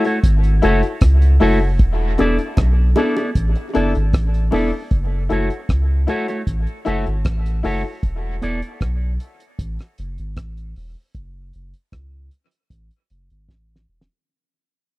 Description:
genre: dub reggae.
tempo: 77 BPM.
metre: 4/4.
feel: straight.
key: F# minor.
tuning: A4 = 436 Hz.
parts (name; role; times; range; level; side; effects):
electric guitar with an envelope filter; accompaniment; 0.0-8.6 s; A3 to D5; -24 LUFS; right 2 dB; spring reverb, dub echo.
warm upright piano; stabs; 0.0-7.8 s; D4 to A4; -23 LUFS; left 5 dB; dub echo.
cloth-damped thuddy drum kit; drums; 0.0-14.2 s; hi-hat, kick drum, rim click, snare drum; -17 LUFS; equal; none.
soft dub sub bass; bass; 0.2-14.1 s; E1 to C#2; -18 LUFS; equal; transformer saturation.
bongos; percussion; 2.2-4.7 s; none; -28 LUFS; right 3 dB; dub echo.
room: little or no reverb.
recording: dry, close 1970s-style studio recording.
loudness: -16 LUFS.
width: side -19 dB against mid.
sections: 0.0-1.8 A section; 1.8-14.3 B section.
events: break 0.0-1.8, 4.9-14.3; fade-out 1.8-14.3; drum fill 13.5-14.3.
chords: 0.0 F#m7; 1.8 E7sus4; 4.9 F#m7; 8.0 Esus4; 11.1 F#m.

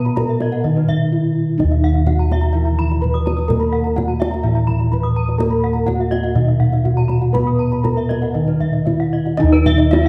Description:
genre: Balinese gamelan.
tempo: 113-127 BPM.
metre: 4/4.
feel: straight.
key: Eb pelog.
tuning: A4 = 439 Hz.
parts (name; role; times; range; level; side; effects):
gamelan-type bronze metallophone; melody; 0.0-10.1 s; Eb4 to Cb5-20c; -24 LUFS; equal; none.
gamelan-type bronze metallophone; accompaniment; 0.0-10.1 s; Eb3 to Cb4-20c; -28 LUFS; equal; none.
gamelan-type bronze metallophone; arpeggios; 0.0-10.1 s; Cb5-20c to Eb6; -32 LUFS; equal; none.
gamelan-type bossed gongs; bass; 0.0-10.1 s; Eb2 to Cb5-20c; -19 LUFS; equal; none.
gamelan-type bronze metallophone; arpeggios; 0.1-10.1 s; Cb5-20c to Eb6; -30 LUFS; equal; none.
kendang; percussion; 0.1-10.1 s; none; -27 LUFS; equal; none.
room: light reverb.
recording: dark, warm production.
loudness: -17 LUFS.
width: mono.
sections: 0.0-9.4 A section.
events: none.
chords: none.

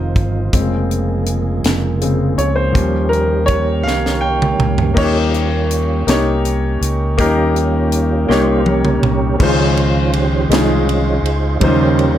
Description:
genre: slow gospel.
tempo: 54 BPM (dotted quarters).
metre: 6/8.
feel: straight.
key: unclear.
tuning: A4 = 441 Hz.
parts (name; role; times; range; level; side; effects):
warm baby grand piano; accompaniment; 0.0-12.2 s; Db3 to G5; -18 LUFS; left 2 dB; none.
percussive tonewheel organ; sustained chords; 0.0-12.2 s; Db3 to C5; -20 LUFS; right 5 dB; slow rotary speaker, overdrive, chorus vibrato.
warm French horn section; sustained chords; 0.0-9.4 s; Db3 to C5; -28 LUFS; right 2 dB; none.
fingered electric bass; bass; 0.0-12.2 s; F1 to Eb2; -18 LUFS; equal; none.
tight funk drum kit; drums; 0.2-12.2 s; crash cymbal, hi-hat, kick drum, ride cymbal, snare drum, toms; -19 LUFS; equal; none.
room: light reverb.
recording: none.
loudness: -13 LUFS.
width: side -11 dB against mid.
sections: 0.0-5.0 A section; 5.0-9.4 B section; 9.4-12.2 C section.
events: grand piano solo 0.0-5.0; drum fill 3.9-5.0, 8.3-9.4; tonewheel organ solo 5.0-9.4, 9.4-12.2.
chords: 0.0 F7; 0.5 Bbm7/F; 2.7 Eb7; 9.4 Dbmaj9; 11.6 Eb13.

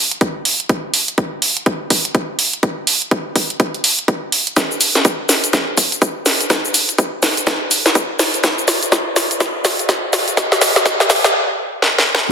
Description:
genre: house.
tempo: 124 BPM.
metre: 4/4.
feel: swing 61% on 16ths.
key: none.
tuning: none.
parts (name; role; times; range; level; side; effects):
house drum kit; drums; 0.1-12.3 s; cabasa, hi-hat, snare drum; -14 LUFS; equal; overdrive, high-pass filter on snare, high-pass filter on hats, high-pass filter on perc, high-pass filter on room.
electronic kick drum; drums; 0.2-11.2 s; none; -19 LUFS; equal; overdrive, high-pass filter on kick, high-pass filter on room.
room: wet plate reverb, RT60 1.6 s.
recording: dense, heavily limited modern master, high-pass filter.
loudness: -14 LUFS.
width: side -6 dB against mid.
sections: 0.0-12.3 A section.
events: build-up 0.0-12.3; drum fill 4.6-11.3, 11.8-12.3; stop 11.3-12.3.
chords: none.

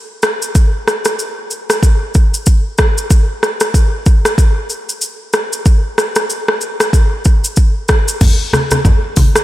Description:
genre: afrobeats.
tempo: 94 BPM.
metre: 4/4.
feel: swing 58% on 16ths.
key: none.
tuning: none.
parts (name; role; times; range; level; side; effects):
afro-pop drum kit; drums; 0.2-9.4 s; crash cymbal, hi-hat, kick drum, rim click, shaker; -11 LUFS; equal; none.
congas; percussion; 8.2-9.3 s; none; -16 LUFS; left 1 dB; none.
room: light reverb.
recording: none.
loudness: -11 LUFS.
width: side -16 dB against mid.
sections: 0.0-8.2 A section; 8.2-9.4 B section.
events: none.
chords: none.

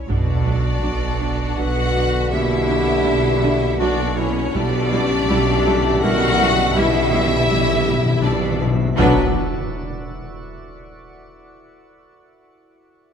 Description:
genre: cinematic, suspense film score.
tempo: 81 BPM.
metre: 3/4.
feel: straight.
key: B harmonic minor.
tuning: A4 = 439 Hz.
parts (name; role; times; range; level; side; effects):
rich symphonic violin section; melody; 0.0-9.4 s; B4 to F#5; -25 LUFS; left 2 dB; none.
mellow clarinet; second line; 0.0-9.3 s; D4 to B4; -24 LUFS; left 2 dB; none.
warm symphonic violin section; second line; 0.0-9.4 s; B3 to F#4; -25 LUFS; left 4 dB; none.
soft dub sub bass; drone; 0.0-9.4 s; B1; -27 LUFS; equal; none.
vibraphone with soft mallets; texture; 0.0-9.0 s; A#3 to C#6; -30 LUFS; left 6 dB; none.
warm symphonic viola section; accompaniment; 0.1-9.4 s; D3 to E4; -27 LUFS; right 2 dB; none.
dark French horn section; sustained chords; 0.1-9.3 s; D3 to F#4; -32 LUFS; left 5 dB; none.
drifting glass-harmonics texture; sustained chords; 0.5-9.4 s; E4 to F#5; -34 LUFS; left 1 dB; chorus, built-in reverb.
warm trombone section; sustained chords; 0.1-9.3 s; B2 to G3; -27 LUFS; right 4 dB; none.
clear symphonic double bass section; bass; 0.1-9.4 s; B1; -25 LUFS; right 6 dB; none.
warm studio cello section; bass; 0.1-9.4 s; B2; -26 LUFS; right 2 dB; none.
sub drop and impact; sound effects; 0.1-2.3, 9.0-11.2 s; none; -26 LUFS; equal; none.
timpani; percussion; 4.5-9.3 s; B2; -25 LUFS; left 4 dB; none.
room: moderate concert hall reverb, RT60 2.3 s.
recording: none.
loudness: -16 LUFS.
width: side -7 dB against mid.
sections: 0.1-9.0 A section; 9.0-11.2 B section.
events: impact 0.1-2.3, 9.0-11.2; timpani fill 4.5-9.0.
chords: 0.1 Bm; 4.5 G6/B; 9.0 Bm.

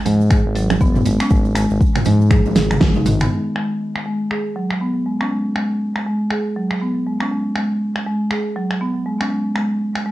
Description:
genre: afro house.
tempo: 120 BPM.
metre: 4/4.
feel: swing 60% on 16ths.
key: G# minor.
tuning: A4 = 443 Hz.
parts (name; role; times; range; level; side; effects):
marimba with medium mallets; arpeggios; 0.1-10.1 s; D#3 to G#4; -19 LUFS; equal; sidechain pumping, low-pass filter, cassette tape, tape echo.
smooth synth bass; bass; 0.1-3.3 s; F#1 to G#2; -19 LUFS; equal; sidechain pumping.
deep house drum kit; drums; 0.1-10.0 s; finger snaps, hi-hat, snare drum, toms; -21 LUFS; equal; low-pass filter on snare, cassette tape, low-pass filter on hats, low-pass filter on toms, low-pass filter on room.
congas; percussion; 0.1-3.2 s; none; -24 LUFS; right 11 dB; none.
tube shaker; percussion; 0.1-3.3 s; none; -40 LUFS; right 16 dB; none.
electronic kick drum; drums; 0.3-2.9 s; none; -16 LUFS; equal; cassette tape.
room: light reverb.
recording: home recording on cassette.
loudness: -16 LUFS.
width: side -15 dB against mid.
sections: 0.0-3.3 A section; 3.3-10.1 B section.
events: filter sweep on marimba 0.0-3.3, 3.3-10.1; drum fill 2.3-3.3; band accent 2.8.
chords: 0.0 G#7(no3); 3.3 N.C..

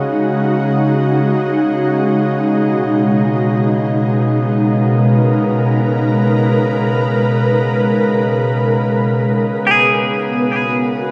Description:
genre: ambient.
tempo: free time.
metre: none.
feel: none.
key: unclear.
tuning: A4 = 438 Hz.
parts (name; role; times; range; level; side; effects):
ethereal airy pad; sustained chords; 0.0-11.1 s; Cb3 to Eb5; -16 LUFS; equal; ensemble chorus, built-in reverb, shimmer reverb.
pedal harmonium; drone; 0.0-11.1 s; Db3; -25 LUFS; equal; none.
clean electric guitar; arpeggios; 9.7-11.1 s; Ab4; -17 LUFS; equal; phaser, dub echo, shimmer reverb.
room: wet plate reverb, RT60 3.2 s.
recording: echo-heavy mix, cassette tape.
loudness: -15 LUFS.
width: mono.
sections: 0.0-11.1 A section.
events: fade-out on harmonium 0.0-11.1.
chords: 0.0 Dbsus24; 2.5 Abm11/Cb; 9.2 Cb69.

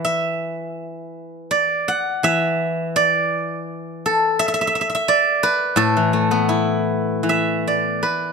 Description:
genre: chinese traditional, Chinese solo plucked strings.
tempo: 78-88 BPM.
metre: 2/4.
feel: rubato.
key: A zhi mode.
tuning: A4 = 441 Hz.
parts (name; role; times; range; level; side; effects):
steel-string zither; solo; 0.0-8.3 s; A2 to D6; -18 LUFS; equal; none.
room: light reverb.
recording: close, detailed microphones.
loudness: -17 LUFS.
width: side -5 dB against mid.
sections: 0.0-7.3 A section; 7.3-8.3 B section.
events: none.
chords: none.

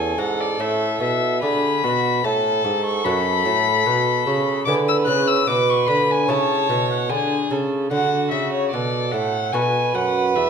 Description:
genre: classical, baroque-style sonata movement with continuo.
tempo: 74 BPM.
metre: 4/4.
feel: straight.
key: unclear.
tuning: A4 = 437 Hz.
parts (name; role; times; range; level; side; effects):
dark violin; melody; 0.0-10.5 s; C#5 to F#6; -22 LUFS; left 6 dB; none.
rich violin; second line; 0.0-10.5 s; F#4 to C#5; -24 LUFS; right 5 dB; none.
lute; accompaniment; 0.0-10.5 s; E2 to B4; -26 LUFS; left 1 dB; none.
warm bassoon; bass; 0.0-10.5 s; E2 to D3; -24 LUFS; right 2 dB; none.
room: wet recital hall reverb, RT60 1.4 s.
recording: minimal, uncompressed stereo recording.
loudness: -18 LUFS.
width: side -6 dB against mid.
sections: 0.0-10.5 A section.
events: none.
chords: 0.0 A; 1.4 Bm7; 4.7 E7; 6.3 A; 7.9 Bm7.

